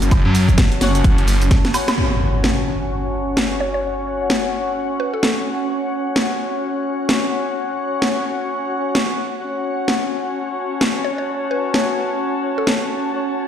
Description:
bass house; 129 BPM; 4/4; swing 60% on 16ths; F# minor; A4 = 440 Hz
phased detuned saw bass; bass; 0.0-1.5 s; F#1 to F#2; -16 LUFS; equal; phaser, sidechain pumping
dusty soul sampler-style drum kit; drums; 0.0-1.9 s; hi-hat, snare drum; -33 LUFS; equal
house drum kit; drums; 0.0-12.8 s; hi-hat, shaker, snare drum, woodblock; -21 LUFS; equal
ethereal airy pad; texture; 0.0-13.5 s; C#4 to A5; -25 LUFS; right 1 dB; ensemble chorus, built-in reverb, phaser, sidechain pumping
electronic kick drum; drums; 0.1-1.6 s; -14 LUFS; equal
warm horn section; stabs; 0.8-13.5 s; C#4 to C#5; -24 LUFS; left 3 dB; sidechain pumping, low-pass filter, tape echo
impact; sound effects; 2.0-3.8 s; -23 LUFS; equal
mallet-like synth pluck; melody; 3.6-5.3, 11.0-13.2 s; A4 to C#5; -27 LUFS; equal; chorus, phaser, tape echo
moderate lush hall reverb, RT60 1.9 s; played on a big sound system in a bare room, stone room reverb; -17 LUFS; side -9 dB against mid
0.0-2.0 A section; 2.0-13.5 B section
filter sweep on detuned saw bass 0.0-2.0; drum fill 1.5-2.0; band accent 1.9; impact 2.0-3.8; filter sweep on horn section 2.0-13.5
0.0 F#5

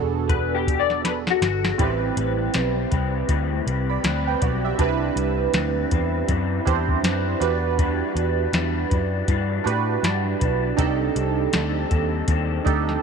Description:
indie pop, bedroom pop; 80 BPM; 4/4; swing 60% on 16ths; A4 = 439 Hz
warm analog keys; accompaniment; 0.0-13.0 s; B3 to B5; -25 LUFS; right 14 dB; chorus, phaser, cassette tape
vintage muted picked electric bass; bass; 0.0-13.0 s; E1 to A2; -25 LUFS; left 1 dB
electric guitar through a small old amp; accompaniment; 0.3-13.0 s; A2 to D5; -26 LUFS; left 15 dB; ensemble chorus, warbly pitch drift
soft vintage rhythm box; drums; 0.3-13.0 s; hi-hat, kick drum, snare drum; -24 LUFS; left 1 dB
light reverb; 1960s-style stereo with parts hard left and right; -20 LUFS; side -6 dB against mid
0.0-1.8 A section; 1.8-13.0 B section
clean electric guitar solo 0.0-1.8; drum fill 1.0-1.8
0.0 Gmaj7; 1.8 Am9; 4.8 Cmaj7; 7.4 Em7; 10.8 Cm6

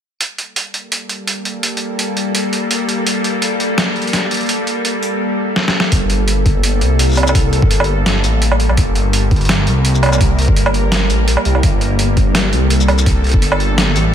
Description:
half-time drum and bass; 168 BPM; 4/4; swing 54% on 16ths, half-time; G minor; A4 = 439 Hz
bowed-like drone; sustained chords; 1.0-14.1 s; G3 to Bb4; -19 LUFS; left 1 dB; built-in reverb, vintage 12-bit sampler grit, sidechain pumping
boom bap sampler-style drum kit; drums; 0.2-14.0 s; hi-hat, shaker, snare drum, woodblock; -18 LUFS; right 1 dB; overdrive, studio ambience
phased detuned saw bass; bass; 5.9-14.1 s; G1 to C2; -15 LUFS; equal; phaser
electronic kick drum; drums; 5.9-13.4 s; -14 LUFS; equal; overdrive, studio ambience
light reverb, digital ambience; -13 LUFS; side -9 dB against mid
0.2-5.9 A section; 5.9-14.1 B section
drum fill 5.6-5.9
0.2 Gmadd9

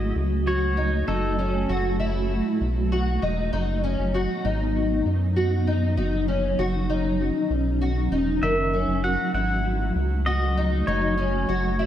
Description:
dream pop; 98 BPM; 4/4; straight; F# dorian; A4 = 437 Hz
pedal steel guitar; melody; 0.0-2.3, 8.4-11.9 s; A4 to F#5; -28 LUFS; left 1 dB; tape echo
granular cloud pad; sustained chords; 0.0-11.9 s; F#3 to F#4; -27 LUFS; right 2 dB; built-in reverb
fingerpicked twelve-string acoustic guitar; arpeggios; 0.0-11.9 s; D#3 to F#4; -27 LUFS; left 2 dB; ensemble chorus, tape echo
round analog bass; bass; 0.0-11.9 s; E1 to F#2; -25 LUFS; equal
light reverb; -21 LUFS; side -11 dB against mid
0.0-11.9 A section
0.0 F#m; 3.5 B/F#; 8.4 F#madd9

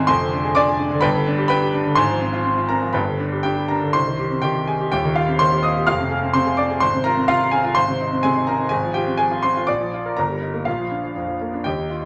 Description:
classical, virtuoso piano study; 126 BPM; 2/4; rubato; C minor; A4 = 439 Hz
warm concert grand piano; solo; 0.0-12.1 s; Eb1 to F6; -20 LUFS; equal
moderate large studio reverb, RT60 1.2 s; -20 LUFS; mono
0.0-4.0 A section; 4.0-11.7 B section
0.1 Dm7b5/F; 1.0 G; 2.0 Fm/Ab; 3.0 G; 4.0 Cm; 4.9 Cm/Eb; 5.9 Fm; 6.8 Fm/Ab; 7.8 Ab; 8.7 Fm/Ab; 9.7 Bb; 10.2 Eb/G; 10.7 Bb

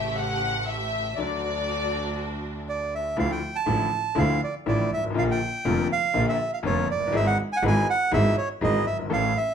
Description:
tango; 121 BPM; 4/4; rubato; D major; A4 = 437 Hz
warm studio violin section; second line; 0.0-2.7 s; D5 to F#5; -28 LUFS; left 4 dB
clear grand piano; accompaniment; 0.0-9.3 s; F1 to A4; -28 LUFS; left 3 dB
clear symphonic string section; stabs; 0.0-3.1 s; C#3 to G4; -35 LUFS; right 4 dB
rich double bass; bass; 0.0-9.3 s; F1 to D2; -28 LUFS; right 2 dB
bandoneon; melody; 2.7-9.5 s; C#5 to A5; -25 LUFS; right 4 dB
moderate large studio reverb, RT60 0.9 s; minimal, uncompressed stereo recording; -22 LUFS; side -8 dB against mid
0.0-3.2 A section; 3.2-9.5 B section
violin section solo 0.0-3.2
0.0 A7; 1.2 D; 3.2 Dmadd9; 5.2 Bb; 7.1 E/G#

